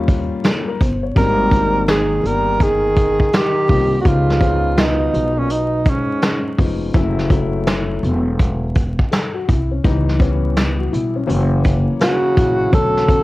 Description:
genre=hip hop, jazz-hop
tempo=83 BPM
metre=4/4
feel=swing 64% on 16ths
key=unclear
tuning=A4 = 440 Hz
part: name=dark upright piano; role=accompaniment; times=0.0-13.2 s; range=D3 to C#5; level=-23 LUFS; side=left 4 dB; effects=none
part: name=upright bass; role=bass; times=0.0-13.2 s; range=E1 to D#2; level=-20 LUFS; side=equal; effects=none
part: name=vintage brush drum kit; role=drums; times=0.1-13.2 s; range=hi-hat, kick drum, snare drum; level=-18 LUFS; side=equal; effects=vintage 12-bit sampler grit, cassette tape
part: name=breathy tenor saxophone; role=melody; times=1.2-6.6, 12.0-13.2 s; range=C#4 to A#4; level=-18 LUFS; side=right 2 dB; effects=cassette tape, analog delay
part: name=bright trombone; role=second line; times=1.2-6.6, 12.0-13.2 s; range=G#2 to G3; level=-24 LUFS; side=left 4 dB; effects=none
room=light reverb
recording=home recording on cassette, vinyl crackle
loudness=-14 LUFS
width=side -18 dB against mid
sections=0.0-13.2 A section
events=none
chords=0.0 D#7; 1.2 G#maj9; 4.1 C#7; 6.9 F#m7; 9.8 C#m7b5; 11.3 F#7; 12.7 Bm7

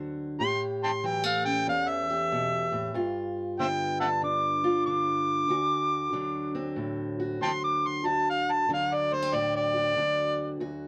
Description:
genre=acoustic country blues, solo or duo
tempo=94 BPM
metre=4/4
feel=swing 65% on 8ths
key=D mixolydian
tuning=A4 = 445 Hz
part: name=fingerpicked steel-string acoustic guitar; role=accompaniment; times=0.0-10.9 s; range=D2 to G4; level=-33 LUFS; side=equal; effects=none
part: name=overdriven harmonica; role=melody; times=0.4-10.6 s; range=C5 to D6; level=-29 LUFS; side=equal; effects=none
room=light reverb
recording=close, detailed microphones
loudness=-28 LUFS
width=mono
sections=0.0-10.6 A section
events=harmonica solo 0.0-10.6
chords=0.4 A7; 2.9 G7; 5.5 D7

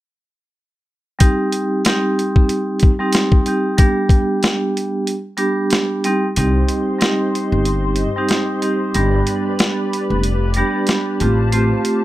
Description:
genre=hip hop, boom-bap hip-hop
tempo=93 BPM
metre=4/4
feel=swing 57% on 16ths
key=C harmonic minor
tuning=A4 = 440 Hz
part: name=vibraphone with medium hard mallets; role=accompaniment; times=1.2-12.0 s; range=G3 to G4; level=-18 LUFS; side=right 1 dB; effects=high-pass filter, low-pass filter
part: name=boom bap sampler-style drum kit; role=drums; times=1.2-12.0 s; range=hi-hat, kick drum, snare drum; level=-16 LUFS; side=equal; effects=none
part: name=hollow soft pad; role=sustained chords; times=6.4-12.0 s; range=G4 to C6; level=-26 LUFS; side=left 2 dB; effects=ensemble chorus, high-pass filter, low-pass filter
part: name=upright bass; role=bass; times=6.4-11.7 s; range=F1 to C2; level=-18 LUFS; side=left 1 dB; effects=none
room=light reverb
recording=none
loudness=-15 LUFS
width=side -15 dB against mid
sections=1.2-6.4 A section; 6.4-12.0 B section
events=break 5.1-6.4; kick muted 6.4-12.0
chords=1.2 Cm; 3.8 G; 6.0 Cm; 8.9 G; 11.2 Fadd9/A

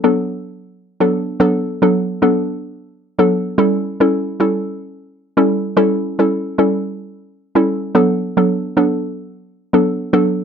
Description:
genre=afrobeats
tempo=110 BPM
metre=4/4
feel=swing 55% on 16ths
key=B minor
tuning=A4 = 439 Hz
part: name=hollow square pluck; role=solo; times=0.0-10.3 s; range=F#3 to A4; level=-14 LUFS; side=equal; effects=chorus
room=light reverb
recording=dark, warm production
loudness=-14 LUFS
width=side -7 dB against mid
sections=0.0-10.4 A section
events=none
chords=0.0 Bm7; 3.6 A7; 8.0 Bm7

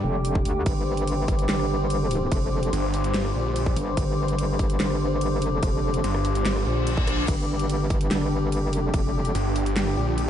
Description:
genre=heavy wobble dubstep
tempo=145 BPM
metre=4/4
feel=half-time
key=unclear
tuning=A4 = 439 Hz
part: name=muted studio string section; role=sustained chords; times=0.0-10.3 s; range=D3 to C5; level=-31 LUFS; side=left 2 dB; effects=sidechain pumping, low-pass filter
part: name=metallic wobble bass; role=bass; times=0.0-9.3 s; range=F1 to D2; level=-25 LUFS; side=equal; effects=chorus, overdrive
part: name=snarling distorted saw bass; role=bass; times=0.0, 2.7-10.3 s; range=G1 to Bb1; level=-25 LUFS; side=equal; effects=overdrive
part: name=warbly tape-like pad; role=texture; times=0.0-10.3 s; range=D4 to D6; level=-29 LUFS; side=equal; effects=chorus, built-in reverb, sidechain pumping
part: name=dubstep drum kit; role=drums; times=0.2-10.3 s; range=crash cymbal, handclaps, hi-hat, rim click, snare drum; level=-32 LUFS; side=right 1 dB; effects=small room ambience
part: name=electronic kick drum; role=drums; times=0.4-9.0 s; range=none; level=-25 LUFS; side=equal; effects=overdrive, small room ambience
part: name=reverse cymbal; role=sound effects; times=6.6-7.3 s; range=none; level=-33 LUFS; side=left 3 dB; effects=none
room=light reverb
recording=nothing above 10.8 kHz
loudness=-22 LUFS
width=side -10 dB against mid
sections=0.0-10.3 A section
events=reverse cymbal 6.6-7.3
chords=0.0 G5

